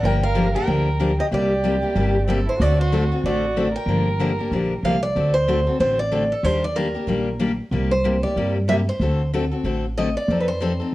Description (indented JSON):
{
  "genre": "acoustic string swing (jazz manouche)",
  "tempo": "187 BPM",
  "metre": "4/4",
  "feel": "swing 59% on 8ths",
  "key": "unclear",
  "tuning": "A4 = 440 Hz",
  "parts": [
    { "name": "picked acoustic archtop guitar", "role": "melody", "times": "0.0-10.9 s", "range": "A4 to G5", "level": "-24 LUFS", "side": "right 1 dB", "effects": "none" },
    { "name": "warm violin", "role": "second line", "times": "0.0-4.8 s", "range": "C4 to Bb4", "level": "-28 LUFS", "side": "right 4 dB", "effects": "none" },
    { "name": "picked steel-string acoustic guitar", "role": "accompaniment", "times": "0.0-10.9 s", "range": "C3 to A4", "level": "-23 LUFS", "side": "left 2 dB", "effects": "none" },
    { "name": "upright bass", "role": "bass", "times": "0.0-10.9 s", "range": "G1 to G2", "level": "-23 LUFS", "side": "equal", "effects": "none" }
  ],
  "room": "moderate studio reverb, RT60 0.6 s",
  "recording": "worn, warbling old tape, cassette tape, warbly pitch drift",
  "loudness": "-18 LUFS",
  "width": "side -16 dB against mid",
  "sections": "0.0-5.2 A section; 5.2-10.9 B section",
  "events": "none",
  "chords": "0.0 Gm7; 1.3 C7; 2.6 D7; 3.9 Gm7; 5.2 D7; 6.4 Ebmaj7; 7.7 C9; 9.0 D7; 10.3 F7"
}